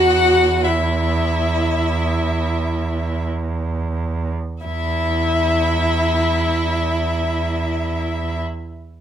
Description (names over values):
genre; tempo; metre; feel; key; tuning
classical, slow romantic movement for string quartet; free time; none; none; unclear; A4 = 440 Hz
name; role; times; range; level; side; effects
rich violin; melody; 0.0-8.4 s; E5 to F#5; -22 LUFS; left 6 dB; none
clear violin; second line; 0.0-8.4 s; E4 to F#4; -28 LUFS; left 2 dB; none
rich viola; accompaniment; 0.0-8.4 s; E4 to F#4; -23 LUFS; right 3 dB; none
rich cello; bass; 0.0-8.4 s; E2; -21 LUFS; right 3 dB; none
room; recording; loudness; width
light reverb; none; -17 LUFS; side -9 dB against mid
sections
0.0-4.7 A section; 4.7-9.0 B section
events
slowing down 0.0-4.7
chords
0.0 Esus2; 4.7 N.C.